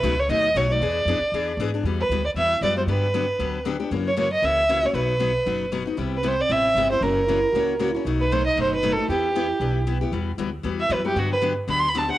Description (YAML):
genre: acoustic string swing (jazz manouche)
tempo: 232 BPM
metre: 4/4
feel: swing 56% on 8ths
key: E minor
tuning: A4 = 444 Hz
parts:
  - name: warm violin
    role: melody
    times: 0.0-12.2 s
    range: F#4 to C6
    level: -22 LUFS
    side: right 1 dB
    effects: cassette tape
  - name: picked steel-string acoustic guitar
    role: accompaniment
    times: 0.0-12.2 s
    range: B2 to G#4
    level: -27 LUFS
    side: left 6 dB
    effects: cassette tape
  - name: upright bass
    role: bass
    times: 0.0-12.1 s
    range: F#1 to G#2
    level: -28 LUFS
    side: equal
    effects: none
  - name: mellow French horn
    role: second line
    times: 6.0-10.1 s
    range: B3 to F#4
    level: -29 LUFS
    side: right 7 dB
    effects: cassette tape
room: moderate spring reverb, RT60 1.8 s, small room ambience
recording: home recording on cassette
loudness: -20 LUFS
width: side -14 dB against mid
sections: 0.0-1.8 A section; 1.8-10.1 B section; 10.1-12.2 C section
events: violin solo 10.1-12.2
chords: 0.0 B7; 0.8 E7b9; 1.8 Emadd9; 2.9 Gmaj7; 3.9 F#7; 4.9 B; 6.0 Cmaj7; 7.0 F#7; 8.1 B7; 9.1 Em; 10.1 Emadd9; 11.2 Gmaj7